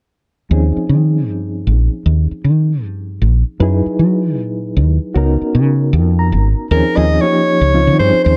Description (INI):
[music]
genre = electric jazz fusion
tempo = 77 BPM (dotted quarters)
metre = 6/8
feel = straight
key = unclear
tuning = A4 = 438 Hz
[part]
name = barky reed electric piano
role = accompaniment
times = 0.5-8.4 s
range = F3 to Bb5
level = -21 LUFS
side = equal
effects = overdrive, fast tremolo
[part]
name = woody fretless electric bass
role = bass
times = 0.5-8.4 s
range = Ab1 to Gb3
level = -15 LUFS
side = equal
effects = none
[part]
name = warm soprano saxophone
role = melody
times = 6.7-8.4 s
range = Bb4 to Eb5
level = -16 LUFS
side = equal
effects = slapback echo
[sound]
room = light reverb, studio reverb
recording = dark, warm production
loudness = -15 LUFS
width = mono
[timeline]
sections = 0.5-6.7 A section; 6.7-8.4 B section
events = reed electric piano fill 5.9-6.7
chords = 0.5 Eb13sus4; 3.6 Gb13sus4; 5.2 Db13sus4; 6.7 Eb13sus4